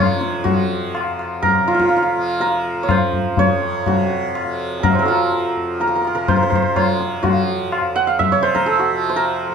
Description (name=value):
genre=indian classical, Hindustani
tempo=124 BPM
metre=7/4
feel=straight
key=F raga bhairav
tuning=A4 = 440 Hz
part: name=santur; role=melody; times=0.0-9.5 s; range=F4 to A5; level=-18 LUFS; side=right 3 dB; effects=none
part: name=tanpura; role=drone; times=0.0-9.5 s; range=F2 to F3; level=-27 LUFS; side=equal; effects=none
part: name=tabla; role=percussion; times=0.2-9.3 s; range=none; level=-20 LUFS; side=left 5 dB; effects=none
room=moderate studio reverb, RT60 0.6 s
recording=none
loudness=-16 LUFS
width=side -6 dB against mid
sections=0.0-9.5 A section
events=speeding up 0.0-9.5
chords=none